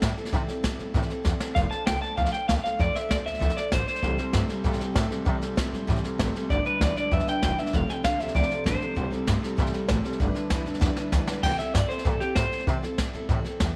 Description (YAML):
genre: rockabilly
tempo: 194 BPM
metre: 4/4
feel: straight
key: C major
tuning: A4 = 438 Hz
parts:
  - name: picked steel-string acoustic guitar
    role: accompaniment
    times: 0.0-13.8 s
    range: C3 to C5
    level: -35 LUFS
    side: equal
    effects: none
  - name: upright bass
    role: bass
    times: 0.0-13.7 s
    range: E1 to C3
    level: -31 LUFS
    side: equal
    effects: none
  - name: jazz brush drum kit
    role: drums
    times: 0.0-13.7 s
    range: crash cymbal, hi-hat, kick drum, snare drum, splash cymbal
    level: -30 LUFS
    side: equal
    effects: none
  - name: electric guitar through a small old amp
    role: melody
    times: 1.5-4.5, 6.5-9.1, 11.4-12.7 s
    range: G4 to A5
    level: -31 LUFS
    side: equal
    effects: tape echo
  - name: electric guitar through a small old amp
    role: riff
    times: 4.0-11.4 s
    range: F2 to A3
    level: -34 LUFS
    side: equal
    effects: vibrato effect
room: light reverb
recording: none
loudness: -26 LUFS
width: mono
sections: 0.0-11.4 A section; 11.4-13.8 B section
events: drum fill 1.3-1.6, 10.8-11.4; clean electric guitar solo 11.4-13.8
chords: 0.0 C6; 1.6 F6; 4.0 C6; 6.5 G6; 7.7 F6; 9.0 C6; 10.2 G6; 11.4 C6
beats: 0.02 | 0.33 0.64 0.94 1.25 | 1.56 1.87 2.18 2.49 | 2.80 3.11 3.42 3.72 | 4.03 4.34 4.65 4.96 | 5.27 5.58 5.88 6.19 | 6.50 6.81 7.12 7.42 | 7.73 8.04 8.35 8.66 | 8.97 9.28 9.59 9.89 | 10.20 10.51 10.82 11.13 | 11.44 11.75 12.05 12.36 | 12.67 12.98 13.29 13.60